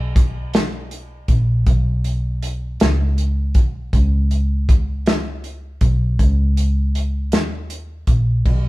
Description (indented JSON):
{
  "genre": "slow six-eight R&B",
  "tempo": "53 BPM (dotted quarters)",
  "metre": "6/8",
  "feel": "straight",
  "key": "unclear",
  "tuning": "A4 = 439 Hz",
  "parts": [
    { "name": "vintage muted fingered electric bass", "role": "bass", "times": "0.0-8.7 s", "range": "A#1 to D#2", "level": "-19 LUFS", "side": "equal", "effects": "none" },
    { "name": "warm soul drum kit", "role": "drums", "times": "0.2-8.6 s", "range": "crash cymbal, hi-hat, kick drum, snare drum", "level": "-17 LUFS", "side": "equal", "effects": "none" }
  ],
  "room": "moderate stone room reverb, RT60 1.4 s",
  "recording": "band playing live in one room",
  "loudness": "-16 LUFS",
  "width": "side -19 dB against mid",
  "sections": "0.0-8.5 A section",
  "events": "none",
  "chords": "none",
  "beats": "0.53 | 1.67 2.80 | 3.93 5.06 | 6.19 7.33 | 8.46"
}